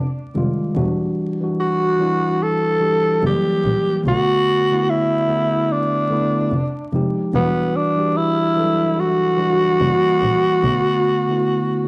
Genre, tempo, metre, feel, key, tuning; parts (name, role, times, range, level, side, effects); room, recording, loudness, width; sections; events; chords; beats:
lo-fi hip hop; 73 BPM; 4/4; swing 60% on 16ths; A4 = 440 Hz
growling tenor saxophone; melody; 0.0-11.9 s; B3 to A4; -18 LUFS; equal; cassette tape
muted double bass; bass; 0.0-10.7 s; E1 to B1; -22 LUFS; equal
mellow tine electric piano; accompaniment; 0.3-11.9 s; D3 to A4; -20 LUFS; equal; cassette tape
moderate spring reverb, RT60 1.3 s, studio reverb; home recording on cassette, vinyl crackle; -16 LUFS; side -30 dB against mid
0.0-11.9 A section
0.0 Fm9; 0.8 Em9; 3.2 F#7b9; 4.1 Bm7; 6.5 Fm9; 7.3 Em9; 9.8 F#7b9; 10.6 Bm7
| 0.77 1.59 2.41 3.23 | 4.05 4.88 5.70 6.52 | 7.34 8.16 8.98 9.81 | 10.63 11.45